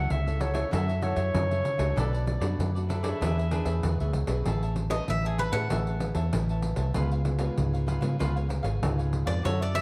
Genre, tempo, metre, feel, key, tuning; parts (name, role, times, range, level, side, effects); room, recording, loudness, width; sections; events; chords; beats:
samba and choro; 96 BPM; 4/4; straight; A major; A4 = 440 Hz
clear clarinet; second line; 0.0-4.1 s; C#5 to F#5; -35 LUFS; equal
cavaquinho; accompaniment; 0.0-9.8 s; D4 to A5; -40 LUFS; equal
nylon-string guitar; accompaniment; 0.0-9.8 s; G#2 to C#5; -37 LUFS; equal
vintage muted fingered electric bass; bass; 0.0-9.8 s; G#1 to C#3; -30 LUFS; equal
pandeiro; percussion; 0.1-9.8 s; -36 LUFS; equal
bowl-back mandolin; melody; 4.9-9.8 s; G#4 to F#5; -33 LUFS; equal
moderate large studio reverb, RT60 1.3 s; dark, warm production; -28 LUFS; mono
0.0-4.5 A section; 4.5-9.8 B section
clarinet solo 0.0-4.5; mandolin solo 4.5-9.8
0.0 F#m7; 2.0 Bm7; 3.2 E6; 4.5 Amaj9; 7.0 C#7
0.10 0.73 1.35 | 1.97 2.60 3.22 3.84 | 4.46 5.09 5.71 6.33 | 6.96 7.58 8.20 8.83 | 9.45